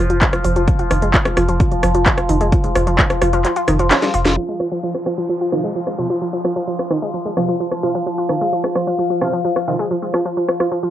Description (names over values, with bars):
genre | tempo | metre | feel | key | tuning
driving peak-time techno | 130 BPM | 4/4 | straight | F minor | A4 = 440 Hz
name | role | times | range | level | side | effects
analog pluck | riff | 0.0-10.9 s | Eb3 to F4 | -20 LUFS | right 1 dB | chorus, sidechain pumping, cassette tape, tape echo
saturated sub bass | bass | 0.0-4.4 s | F1 | -19 LUFS | equal | tube saturation, sidechain pumping, low-pass filter
overtone-sweeping drone | drone | 0.0-10.9 s | F3 to F4 | -22 LUFS | left 1 dB | chorus, built-in reverb, sidechain pumping, cassette tape
techno drum kit | drums | 0.1-10.7 s | handclaps, hi-hat, rim click, snare drum | -19 LUFS | equal | overdrive, small room ambience, cassette tape, sidechain pumping on hats
electronic kick drum | drums | 0.2-3.1 s | none | -18 LUFS | equal | overdrive, small room ambience, cassette tape
downlifter | sound effects | 4.6-8.1 s | none | -38 LUFS | equal | none
rave stab | stabs | 5.5-9.7 s | C3 to F4 | -24 LUFS | right 2 dB | chorus, built-in reverb, sidechain pumping, cassette tape, tape echo
room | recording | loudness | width
moderate small room reverb, RT60 0.6 s | home recording on cassette, low-pass filter | -15 LUFS | side -12 dB against mid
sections
0.0-4.4 A section; 4.4-10.9 B section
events
filter sweep on synth arpeggio sound 0.0-4.4; kick drops out 3.4-4.4; drum fill 3.9-4.4; band accent 4.3; filter sweep 4.4-10.9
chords
0.0 Fm; 4.4 F5